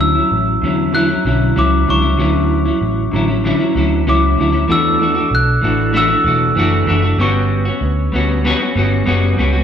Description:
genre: indie pop, bedroom pop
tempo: 96 BPM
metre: 4/4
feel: straight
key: D major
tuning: A4 = 440 Hz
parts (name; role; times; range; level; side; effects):
- glockenspiel with soft plastic mallets; melody; 0.0-7.8 s; C#6 to F#6; -19 LUFS; equal; none
- semi-hollow electric guitar; accompaniment; 0.0-9.6 s; D3 to F#4; -16 LUFS; left 1 dB; vibrato effect
- vintage muted picked electric bass; bass; 0.0-9.6 s; E1 to E2; -17 LUFS; right 1 dB; none
room: wet large studio reverb, RT60 1.1 s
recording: band playing live in one room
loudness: -12 LUFS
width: side -8 dB against mid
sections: 0.0-9.6 A section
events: none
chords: 0.0 Dmaj9; 4.7 E9sus4; 7.2 Gmaj7#11

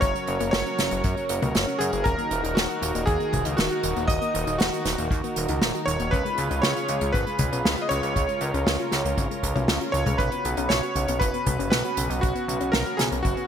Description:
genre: synthwave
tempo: 118 BPM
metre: 4/4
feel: straight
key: Eb minor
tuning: A4 = 440 Hz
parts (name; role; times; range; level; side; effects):
- clear electric grand piano; melody; 0.0-13.5 s; Gb4 to Eb5; -29 LUFS; right 1 dB; ping-pong delay
- FM electric piano with soft pad layer; second line; 0.0-13.5 s; Gb5 to Eb6; -32 LUFS; equal; chorus, phaser, ping-pong delay
- warm analog pad; sustained chords; 0.0-13.5 s; Db3 to Bb4; -31 LUFS; right 2 dB; chorus, sidechain pumping
- soft round pluck; arpeggios; 0.0-13.5 s; Db3 to Gb4; -33 LUFS; left 3 dB; chorus, ping-pong delay
- chorused synth bass; bass; 0.0-13.4 s; Eb1 to Gb2; -29 LUFS; equal; tube saturation
- kick drum; drums; 0.0-13.3 s; none; -27 LUFS; equal; none
- unplugged drum kit; drums; 0.0-13.5 s; hi-hat, snare drum, toms; -27 LUFS; right 1 dB; none
room: moderate plate reverb, RT60 2.1 s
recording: bright 1980s-style digital production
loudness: -22 LUFS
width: side -8 dB against mid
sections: 0.0-13.5 A section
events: none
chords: 0.0 Gb; 2.1 Ebm; 6.1 Db; 10.2 Bsus2

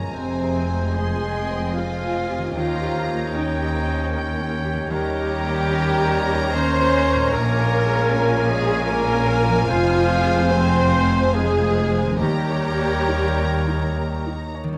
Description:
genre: cinematic, emotional film score for orchestra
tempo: 68-78 BPM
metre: 3/4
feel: rubato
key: unclear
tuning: A4 = 440 Hz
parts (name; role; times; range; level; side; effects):
- rich studio violin section; melody; 0.0-14.6 s; G5 to C6; -35 LUFS; equal; none
- mellow cor anglais; second line; 0.0-14.4 s; Bb4 to Ab5; -35 LUFS; equal; none
- warm clarinet; second line; 0.0-14.4 s; C5 to Db5; -32 LUFS; equal; none
- warm symphonic violin section; second line; 0.0-14.6 s; Bb4 to Bb5; -36 LUFS; equal; none
- clear concert grand piano; accompaniment; 0.0-14.8 s; Bb1 to Db5; -32 LUFS; equal; none
- concert harp; arpeggios; 0.0-14.8 s; Bb2 to Db5; -35 LUFS; equal; none
- rich studio double bass section; bass; 0.0-14.6 s; F1 to Eb2; -28 LUFS; equal; none
- warm studio cello section; bass; 0.0-14.6 s; Eb2 to Bb2; -28 LUFS; equal; none
- concert flute; second line; 0.1-14.3 s; C5 to C6; -31 LUFS; equal; none
- rich studio viola section; accompaniment; 0.1-14.3 s; C4 to C5; -28 LUFS; equal; none
- warm French horn section; sustained chords; 0.1-14.3 s; C3 to Db4; -31 LUFS; equal; none
room: moderate recital hall reverb, RT60 1.4 s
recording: close, detailed microphones, vinyl crackle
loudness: -21 LUFS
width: mono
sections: 0.0-14.8 A section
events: none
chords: 0.1 Fm; 2.6 Eb7; 7.3 Bbm7; 9.7 Fm; 12.2 Eb7

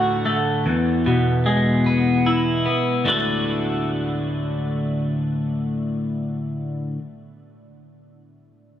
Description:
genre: rock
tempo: 50 BPM (dotted quarters)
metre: 6/8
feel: straight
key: D lydian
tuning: A4 = 439 Hz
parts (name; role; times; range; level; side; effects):
- twelve-string electric guitar; arpeggios; 0.0-7.0 s; D2 to F#4; -19 LUFS; left 1 dB; phaser, slapback echo
room: moderate huge ambient reverb, RT60 7.1 s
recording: none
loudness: -19 LUFS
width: side -10 dB against mid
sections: 0.0-3.1 A section; 3.1-5.5 B section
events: none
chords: 0.0 D; 0.7 E; 3.1 D

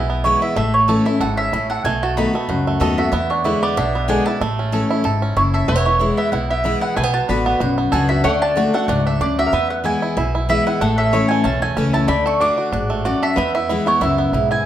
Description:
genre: bluegrass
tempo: 188 BPM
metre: 4/4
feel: swing 54% on 8ths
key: unclear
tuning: A4 = 440 Hz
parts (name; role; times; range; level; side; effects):
- mandolin; melody; 0.0-14.6 s; C#5 to D6; -21 LUFS; right 2 dB; none
- picked steel-string acoustic guitar; accompaniment; 0.0-14.6 s; E2 to F#4; -21 LUFS; left 3 dB; none
- bluegrass banjo; arpeggios; 0.0-14.7 s; A3 to A4; -22 LUFS; right 5 dB; none
- upright bass; bass; 0.0-14.6 s; E1 to E2; -23 LUFS; equal; none
- lap resonator guitar; second line; 5.7-14.7 s; A4 to D5; -25 LUFS; left 4 dB; none
room: moderate large studio reverb, RT60 1.0 s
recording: none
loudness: -16 LUFS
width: side -11 dB against mid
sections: 0.0-14.7 A section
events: none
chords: 0.0 E; 0.6 A; 1.9 B7; 3.1 E7; 4.4 A; 5.7 E; 7.0 Bm; 8.2 D; 9.5 E; 10.8 A; 12.1 D; 13.4 E

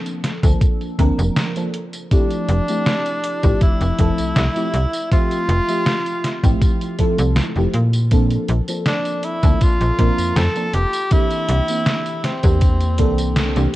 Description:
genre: vaporwave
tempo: 80 BPM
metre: 4/4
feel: straight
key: F major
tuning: A4 = 437 Hz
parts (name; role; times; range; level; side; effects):
- FM electric piano with soft pad layer; accompaniment; 0.0-13.7 s; E3 to E5; -23 LUFS; equal; phaser, analog chorus, analog delay
- detuned 8-bit digital drum machine; drums; 0.1-13.7 s; hi-hat, snare drum, tambourine; -24 LUFS; equal; small room ambience
- slap-like FM bass; bass; 0.4-13.7 s; F1 to Bb2; -18 LUFS; equal; none
- electronic kick drum; drums; 0.4-13.1 s; none; -16 LUFS; equal; small room ambience
- breathy tenor saxophone; melody; 2.1-13.7 s; C4 to A4; -23 LUFS; equal; tape echo
room: light reverb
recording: dark, warm production, cassette tape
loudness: -16 LUFS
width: side -16 dB against mid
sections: 0.0-13.8 A section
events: band accent 13.4-13.7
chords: 0.0 Bbmaj9; 2.1 Fmaj7; 7.7 Bbmaj9; 11.1 C7

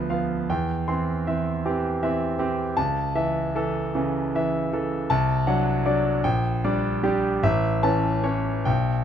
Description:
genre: classical, romantic nocturne for solo piano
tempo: 42-55 BPM (dotted quarters)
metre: 12/8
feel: rubato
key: unclear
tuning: A4 = 439 Hz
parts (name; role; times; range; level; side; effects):
- clear concert grand piano; solo; 0.0-9.0 s; A1 to C6; -22 LUFS; equal; none
room: little or no reverb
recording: close, detailed microphones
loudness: -22 LUFS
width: side -9 dB against mid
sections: 0.0-9.0 A section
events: none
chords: 0.5 C/E; 2.8 A/C#; 5.1 D7/C; 6.2 Gm/Bb; 7.4 A

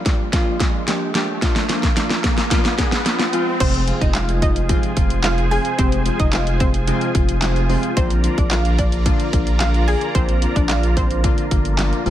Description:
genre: dance-pop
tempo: 110 BPM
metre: 4/4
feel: straight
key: unclear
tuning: A4 = 438 Hz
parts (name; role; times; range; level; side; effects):
- riser; sound effects; 0.0-3.6 s; none; -26 LUFS; right 1 dB; none
- warm analog keys; accompaniment; 0.1-12.1 s; C3 to Ab4; -24 LUFS; left 1 dB; chorus, sidechain pumping
- pop drum kit; drums; 0.1-12.1 s; crash cymbal, handclaps, hi-hat, kick drum, snare drum; -19 LUFS; equal; none
- analog pluck; melody; 3.6-11.1 s; C4 to Ab5; -24 LUFS; equal; chorus, sidechain pumping
- filtered supersaw swell; sustained chords; 3.6-12.1 s; F4 to Bb5; -28 LUFS; right 2 dB; sidechain pumping
- saturated sub bass; bass; 3.6-12.1 s; F1 to Bb1; -20 LUFS; equal; sidechain pumping
room: digital ambience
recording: none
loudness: -16 LUFS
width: side -12 dB against mid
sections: 0.0-3.6 A section; 3.6-12.1 B section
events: build-up 0.0-3.6; drum fill 0.0-3.6; riser 0.0-3.6; drop 3.6-12.1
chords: 0.0 Bb; 3.3 Fm; 8.0 Bb

